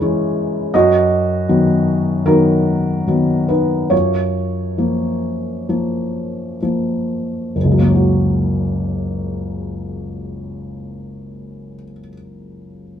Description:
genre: neoclassical minimalist piano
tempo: 62-83 BPM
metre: 4/4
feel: rubato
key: F# major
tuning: A4 = 438 Hz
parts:
  - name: felt-muted upright piano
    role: solo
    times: 0.0-13.0 s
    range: F#1 to D#5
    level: -16 LUFS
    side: equal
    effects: none
room: moderate stone room reverb, RT60 1.2 s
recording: band playing live in one room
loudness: -15 LUFS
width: side -9 dB against mid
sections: 0.0-7.6 A section; 7.6-11.2 B section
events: slowing down 0.0-7.6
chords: 0.0 C#m/F#; 0.7 B/F#; 3.9 A#m/F#; 7.6 F#

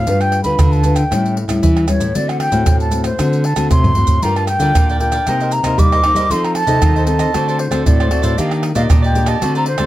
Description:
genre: samba and choro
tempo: 116 BPM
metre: 4/4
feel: straight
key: G minor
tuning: A4 = 438 Hz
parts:
  - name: wooden flute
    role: melody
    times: 0.0-9.9 s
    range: C5 to D6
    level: -19 LUFS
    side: equal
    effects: none
  - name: nylon-string guitar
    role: accompaniment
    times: 0.0-9.9 s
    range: G2 to B4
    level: -21 LUFS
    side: left 3 dB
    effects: none
  - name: nylon-string guitar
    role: bass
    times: 0.0-9.9 s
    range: G2 to G3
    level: -19 LUFS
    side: left 1 dB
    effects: none
  - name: maracas, surdo, pandeiro and tamborim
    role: percussion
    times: 0.1-9.9 s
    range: none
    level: -16 LUFS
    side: right 1 dB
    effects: none
  - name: cavaquinho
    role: accompaniment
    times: 4.2-9.9 s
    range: D4 to G5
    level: -24 LUFS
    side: right 4 dB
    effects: none
room: light reverb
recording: none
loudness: -12 LUFS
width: side -15 dB against mid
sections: 0.0-9.9 A section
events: drum fill 3.7-4.2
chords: 0.1 G7; 1.1 A7; 2.2 D7; 4.2 Gm7; 5.3 Cm7; 6.3 F7; 7.3 D7; 8.4 Ebmaj7

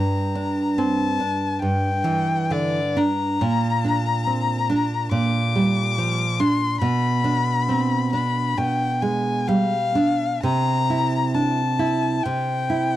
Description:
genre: romantic duo for violin and classical guitar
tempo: 60-72 BPM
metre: 4/4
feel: rubato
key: unclear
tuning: A4 = 437 Hz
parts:
  - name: warm violin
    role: melody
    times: 0.0-13.0 s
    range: D5 to D6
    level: -24 LUFS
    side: left 5 dB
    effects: none
  - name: nylon-string guitar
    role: accompaniment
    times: 0.0-13.0 s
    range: G2 to E4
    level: -21 LUFS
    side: right 2 dB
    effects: none
room: light reverb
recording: dry, close 1970s-style studio recording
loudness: -19 LUFS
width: side -13 dB against mid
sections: 0.0-13.0 A section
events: none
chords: 0.0 Em7b5/G; 3.4 Gm/Bb; 6.8 Bdim7; 10.5 C

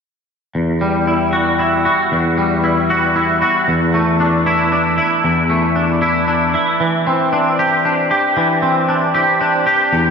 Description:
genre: rock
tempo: 115 BPM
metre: 3/4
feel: straight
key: E minor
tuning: A4 = 441 Hz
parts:
  - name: twangy electric guitar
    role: arpeggios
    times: 0.6-10.1 s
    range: E2 to G4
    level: -13 LUFS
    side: equal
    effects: ensemble chorus, analog delay
room: wet lush hall reverb, RT60 2.9 s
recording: dreamy mix soaked in reverb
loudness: -13 LUFS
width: side -6 dB against mid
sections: 0.6-10.1 A section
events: none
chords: 0.6 Emadd9; 3.7 E7sus4; 6.8 Cadd9/E

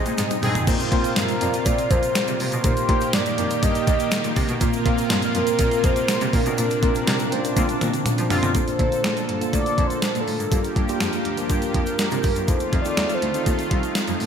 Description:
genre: 1980s-style pop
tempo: 122 BPM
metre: 4/4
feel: straight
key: Bb major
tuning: A4 = 439 Hz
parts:
  - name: mellow tine electric piano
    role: accompaniment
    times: 0.0-14.3 s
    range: G2 to D5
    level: -26 LUFS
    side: right 1 dB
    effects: medium stereo tremolo
  - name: lush unison pad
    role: sustained chords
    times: 0.0-14.3 s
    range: C3 to A4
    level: -28 LUFS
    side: equal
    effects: chorus
  - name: warm cello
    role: bass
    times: 0.1-14.3 s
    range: C2 to Bb3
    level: -28 LUFS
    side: equal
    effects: none
  - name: clean 12-bit digital drum machine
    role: drums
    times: 0.1-14.3 s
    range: crash cymbal, hi-hat, kick drum, snare drum, tambourine, toms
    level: -23 LUFS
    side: equal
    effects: gated reverb
  - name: egg shaker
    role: percussion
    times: 0.1-14.3 s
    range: none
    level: -38 LUFS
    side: left 9 dB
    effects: none
  - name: analog synth brass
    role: stabs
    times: 0.4-0.6, 7.6-8.5 s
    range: D3 to Ab4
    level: -28 LUFS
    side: left 2 dB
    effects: chorus, ping-pong delay
  - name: mellow horn-like synth lead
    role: melody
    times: 1.2-13.9 s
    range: A4 to Eb5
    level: -26 LUFS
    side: equal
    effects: chorus, ping-pong delay
room: moderate lush hall reverb, RT60 1.8 s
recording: bright 1980s-style digital production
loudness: -19 LUFS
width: side -7 dB against mid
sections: 0.0-8.5 A section; 8.5-14.3 B section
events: band accent 0.0-0.7, 6.6-8.5; drum fill 0.2-0.7, 7.6-8.5; soft synth lead solo 8.5-14.3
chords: 0.0 Ab; 0.7 Bbsus2; 2.6 Eb; 4.6 Bbsus2; 6.3 Bbadd9; 8.5 Bbmaj7; 10.5 Gm7; 12.5 F7

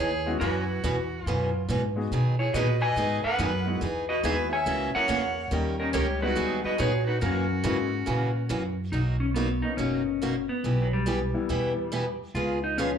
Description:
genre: country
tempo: 141 BPM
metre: 4/4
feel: swing 66% on 8ths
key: B major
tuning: A4 = 440 Hz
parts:
  - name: clean lap steel guitar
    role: melody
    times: 0.0-13.0 s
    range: F#3 to G#5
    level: -29 LUFS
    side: left 1 dB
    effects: plate reverb, slapback echo
  - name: warm fiddle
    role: second line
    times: 0.0-8.7 s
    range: D#4 to E5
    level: -34 LUFS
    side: right 1 dB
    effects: plate reverb, slapback echo
  - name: picked acoustic archtop guitar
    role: accompaniment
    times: 0.0-12.9 s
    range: B2 to A#4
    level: -30 LUFS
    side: right 2 dB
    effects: plate reverb, slapback echo
  - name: upright bass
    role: bass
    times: 0.0-13.0 s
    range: F#1 to B2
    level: -29 LUFS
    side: equal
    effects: none
  - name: clear upright piano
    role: accompaniment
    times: 0.3-13.0 s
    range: E3 to G#4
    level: -34 LUFS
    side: left 5 dB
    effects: plate reverb, slapback echo
room: moderate club reverb, RT60 0.7 s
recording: live gig heard through the venue's PA, club reverb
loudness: -24 LUFS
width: side -8 dB against mid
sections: 0.0-8.9 A section; 8.9-13.0 B section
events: none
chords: 0.4 F#9sus4; 2.1 B6; 3.0 G#m7; 3.8 Emaj9; 4.7 F#7; 5.5 D#7; 6.4 G#m9; 7.2 F#9; 8.9 Bmaj9; 10.6 Em/B; 12.3 C#7

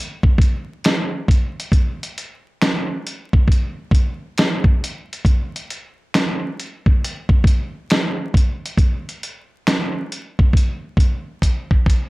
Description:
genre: hip hop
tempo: 68 BPM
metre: 4/4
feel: swing 65% on 16ths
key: none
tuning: none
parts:
  - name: dusty soul sampler-style drum kit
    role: drums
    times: 0.2-12.1 s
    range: finger snaps, hi-hat, kick drum, snare drum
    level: -16 LUFS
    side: equal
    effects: none
room: little or no reverb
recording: dry, gritty hardware recording, vinyl crackle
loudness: -17 LUFS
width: side -22 dB against mid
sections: 0.0-12.1 A section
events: drum fill 11.4-12.1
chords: none

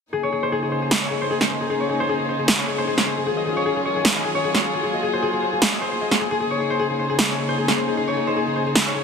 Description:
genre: future bass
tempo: 153 BPM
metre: 4/4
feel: swing 53% on 16ths, half-time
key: Bb minor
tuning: A4 = 444 Hz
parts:
  - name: dark studio string section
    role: sustained chords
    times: 0.1-9.0 s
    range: Db3 to Ab4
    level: -25 LUFS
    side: left 1 dB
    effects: none
  - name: concert harp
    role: arpeggios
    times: 0.1-9.0 s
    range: Ab4 to Eb5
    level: -24 LUFS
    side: left 3 dB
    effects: low-pass filter, dub echo
  - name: electronic snare drum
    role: drums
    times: 0.9-8.8 s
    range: none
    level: -22 LUFS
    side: right 2 dB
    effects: none
room: light reverb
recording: dense, heavily limited modern master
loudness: -19 LUFS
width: side -6 dB against mid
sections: 0.1-9.0 A section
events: none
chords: 0.1 Bbm11; 3.3 Ebm11; 4.8 Ab13; 6.4 Bbm11

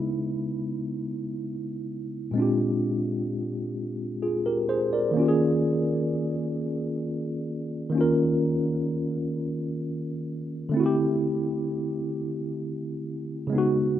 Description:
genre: R&B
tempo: 43 BPM (dotted quarters)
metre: 6/8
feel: straight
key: unclear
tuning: A4 = 440 Hz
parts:
  - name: tine electric piano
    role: solo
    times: 0.0-14.0 s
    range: Bb2 to D5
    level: -25 LUFS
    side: equal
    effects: overdrive, medium stereo tremolo
room: moderate lush hall reverb, RT60 3.3 s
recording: rough home demo mix, nothing above 10.9 kHz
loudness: -25 LUFS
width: side -11 dB against mid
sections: 0.0-5.1 A section; 5.1-14.0 B section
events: none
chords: 0.0 Dbm9; 2.4 Bb13; 5.1 Eb9sus4; 10.7 D9sus4

